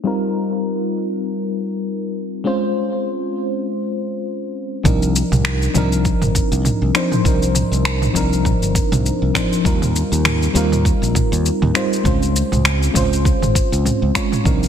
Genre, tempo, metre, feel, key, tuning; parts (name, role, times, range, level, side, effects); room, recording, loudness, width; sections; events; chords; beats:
sunset chillout; 100 BPM; 4/4; swing 56% on 16ths; C phrygian; A4 = 440 Hz
mellow FM electric piano; accompaniment; 0.0-14.7 s; F3 to Db5; -20 LUFS; left 2 dB; chorus, auto-pan, cassette tape, ping-pong delay
modern bright fingered electric bass; bass; 4.8-14.7 s; G1 to Eb2; -19 LUFS; right 1 dB
deep house drum kit; drums; 4.8-14.7 s; finger snaps, shaker, toms; -21 LUFS; right 2 dB; overdrive, soft clipping on snare
electronic kick drum; drums; 4.9-14.6 s; -20 LUFS; right 1 dB; overdrive
moderate plate reverb, RT60 2.2 s; dense, heavily limited modern master, low-pass filter; -16 LUFS; side -8 dB against mid
0.0-4.9 A section; 4.9-14.7 B section
filter sweep 0.0-4.9
0.1 Eb69; 2.5 Dbmaj7; 4.9 Cm11; 9.7 Eb69; 12.1 Dbmaj7
| 0.05 0.65 1.25 1.85 | 2.45 3.05 3.65 4.25 | 4.85 5.45 6.05 6.65 | 7.25 7.85 8.45 9.05 | 9.65 10.25 10.85 11.45 | 12.05 12.65 13.25 13.85 | 14.45